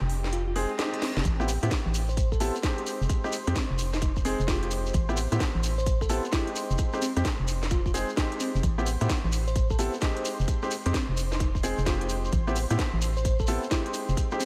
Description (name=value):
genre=UK garage, two-step garage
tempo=130 BPM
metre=4/4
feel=swing 64% on 16ths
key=unclear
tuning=A4 = 442 Hz
part: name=ethereal airy pad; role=sustained chords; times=0.0-14.5 s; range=G4 to C6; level=-43 LUFS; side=equal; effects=ensemble chorus, built-in reverb, sidechain pumping
part: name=organ-like FM bass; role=bass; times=0.0-14.2 s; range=F1 to A2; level=-30 LUFS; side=equal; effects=none
part: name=garage drum kit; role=drums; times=0.1-14.5 s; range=hi-hat, rim click, snare drum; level=-37 LUFS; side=equal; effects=none
part: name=bell-like FM electric piano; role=melody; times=0.3-14.5 s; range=C4 to C5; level=-38 LUFS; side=equal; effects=chorus, diffuse ambient delay
part: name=reverse cymbal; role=sound effects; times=0.5-1.2 s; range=none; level=-45 LUFS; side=equal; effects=none
part: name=bright baby grand piano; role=stabs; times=0.6-14.4 s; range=Ab3 to A4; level=-35 LUFS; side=equal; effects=diffuse ambient delay
part: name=electronic kick drum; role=drums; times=1.2-14.3 s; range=none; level=-30 LUFS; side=equal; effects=none
part: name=shekere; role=percussion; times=1.3-14.5 s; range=none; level=-41 LUFS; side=equal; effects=none
room=light reverb, digital ambience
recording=none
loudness=-27 LUFS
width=mono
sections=0.0-14.5 A section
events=break 0.0-1.2; reverse cymbal 0.5-1.2; drum fill 1.0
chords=0.0 Fm9; 1.2 Am9; 2.9 Fm9; 4.9 Am9; 6.6 Fm9; 8.6 Am9; 10.2 Fm9; 12.3 Am9; 13.9 Fm9